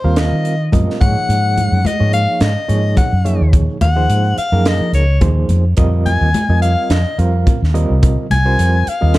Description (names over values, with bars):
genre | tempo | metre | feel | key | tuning
electric jazz fusion | 107 BPM | 4/4 | swing 55% on 16ths | F minor | A4 = 440 Hz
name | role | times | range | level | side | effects
clear soprano saxophone | melody | 0.0-9.2 s | C5 to Ab5 | -19 LUFS | left 2 dB | none
overdriven reed electric piano | accompaniment | 0.0-9.2 s | F3 to F5 | -22 LUFS | right 3 dB | medium tremolo
fretless electric bass | bass | 0.0-9.2 s | C2 to F3 | -14 LUFS | equal | none
crisp fusion drum kit | drums | 0.2-9.2 s | hi-hat, kick drum, snare drum | -18 LUFS | equal | none
congas | percussion | 0.2-9.2 s | none | -23 LUFS | left 2 dB | none
room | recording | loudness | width
little or no reverb | dark, warm production | -12 LUFS | side -18 dB against mid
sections
0.0-9.2 A section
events
soprano saxophone solo 0.0-9.2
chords
0.0 F9sus4; 1.0 Ab9sus4; 5.8 F9sus4